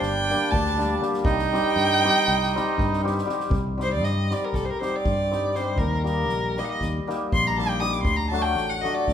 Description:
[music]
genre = balkan folk, Balkan wedding band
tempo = 238 BPM (eighths)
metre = 9/8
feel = straight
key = C dorian sharp4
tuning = A4 = 440 Hz
[part]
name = rich violin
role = melody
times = 0.0-9.1 s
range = A4 to Eb6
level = -25 LUFS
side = equal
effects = none
[part]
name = accordion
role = second line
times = 0.0-3.0 s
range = D4 to Eb4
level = -26 LUFS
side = right 6 dB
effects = none
[part]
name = hammered dulcimer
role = accompaniment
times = 0.0-9.1 s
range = F#3 to G4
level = -27 LUFS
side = left 3 dB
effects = none
[part]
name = fingered electric bass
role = bass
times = 0.0-9.1 s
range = G1 to G2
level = -28 LUFS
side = equal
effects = none
[part]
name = soft-mallet drum kit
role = percussion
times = 0.0-9.1 s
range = kick drum, snare drum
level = -30 LUFS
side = equal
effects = none
[sound]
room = moderate recital hall reverb, RT60 1.4 s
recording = minimal, uncompressed stereo recording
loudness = -21 LUFS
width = side -9 dB against mid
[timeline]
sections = 0.0-3.5 A section; 3.5-9.1 B section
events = violin solo 3.5-9.1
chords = 0.0 Gm; 1.3 Cm; 5.8 Eb; 8.1 D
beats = 0.24 0.50 0.75 1.00 | 1.25 1.50 1.75 2.01 2.26 2.51 2.76 3.01 3.27 | 3.52 3.77 4.02 4.27 4.53 4.78 5.03 5.28 5.53 | 5.79 6.04 6.29 6.54 6.79 7.05 7.30 7.55 7.80 | 8.05 8.31 8.56 8.81 9.06

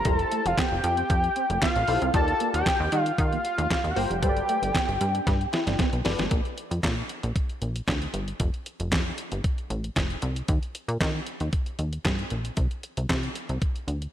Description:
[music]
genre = early-eighties boogie funk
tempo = 115 BPM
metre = 4/4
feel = straight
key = unclear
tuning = A4 = 441 Hz
[part]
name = fat analog lead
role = melody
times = 0.0-5.8 s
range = F5 to A5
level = -26 LUFS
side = equal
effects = slapback echo
[part]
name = funky polysynth comp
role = accompaniment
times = 0.0-6.2 s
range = F#3 to D5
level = -33 LUFS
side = left 3 dB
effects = chorus, slapback echo
[part]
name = plucky analog bass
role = bass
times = 0.0-14.1 s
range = F1 to Eb3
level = -28 LUFS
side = equal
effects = none
[part]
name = clean 12-bit digital drum machine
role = drums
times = 0.0-14.1 s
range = handclaps, hi-hat, kick drum, snare drum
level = -27 LUFS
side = equal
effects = none
[part]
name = electric guitar through a small old amp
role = riff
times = 0.1-6.3 s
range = G3 to E4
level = -34 LUFS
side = right 3 dB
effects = analog chorus, slapback echo
[sound]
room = moderate lush hall reverb, RT60 2.1 s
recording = big arena sound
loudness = -24 LUFS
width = side -10 dB against mid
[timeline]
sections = 0.0-6.3 A section; 6.3-14.1 B section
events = drum fill 5.3-6.3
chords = 0.1 Fmaj9; 2.1 Ebmaj9; 4.2 Gmaj9; 6.3 Bb; 8.4 F; 10.5 Eb; 12.6 Csus2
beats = | 0.05 0.57 1.10 1.62 | 2.14 2.66 3.18 3.71 | 4.23 4.75 5.27 5.79 | 6.31 6.83 7.36 7.88 | 8.40 8.92 9.44 9.97 | 10.49 11.01 11.53 12.05 | 12.57 13.10 13.62

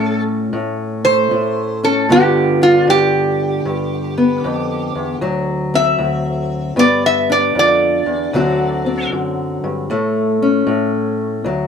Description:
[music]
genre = acoustic country blues, solo or duo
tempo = 77 BPM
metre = 4/4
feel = swing 66% on 8ths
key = unclear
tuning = A4 = 440 Hz
[part]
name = metal-body resonator slide guitar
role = melody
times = 0.0-9.1 s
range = F4 to E5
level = -16 LUFS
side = right 1 dB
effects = slapback echo, plate reverb
[part]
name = fingerpicked steel-string acoustic guitar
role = accompaniment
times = 0.0-11.7 s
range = D2 to F#4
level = -16 LUFS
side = left 1 dB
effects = none
[sound]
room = wet small room reverb, RT60 0.6 s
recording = dark, warm production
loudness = -14 LUFS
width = side -7 dB against mid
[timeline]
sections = 0.0-11.5 A section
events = resonator guitar played with a steel bar solo 0.0-11.7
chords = 0.0 A; 2.1 G7; 5.2 D7; 6.8 G7; 8.3 D7; 9.9 A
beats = 0.52 1.30 | 2.08 2.87 3.65 4.43 | 5.21 5.99 6.77 7.55 | 8.33 9.11 9.89 10.67 | 11.45

